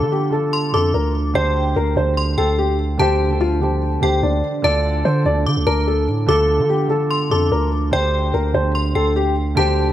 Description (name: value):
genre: hip hop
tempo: 146 BPM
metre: 4/4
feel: half-time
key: D minor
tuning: A4 = 439 Hz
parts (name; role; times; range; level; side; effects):
- dark upright piano; melody; 0.0-9.9 s; D4 to D5; -20 LUFS; left 2 dB; none
- metallic FM bell; second line; 0.0-9.9 s; G5 to D6; -25 LUFS; left 1 dB; chorus, phaser, digital delay
- felt-muted upright piano; accompaniment; 0.0-9.9 s; D3 to C5; -23 LUFS; right 4 dB; none
- long sustained 808-style bass; bass; 0.0-9.9 s; D2 to D3; -20 LUFS; equal; none
room: light reverb, studio ambience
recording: none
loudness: -16 LUFS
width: side -12 dB against mid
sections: 0.0-9.9 A section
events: none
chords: 0.0 Dm; 1.4 Csus2/D; 4.6 Dm; 7.9 Csus2/D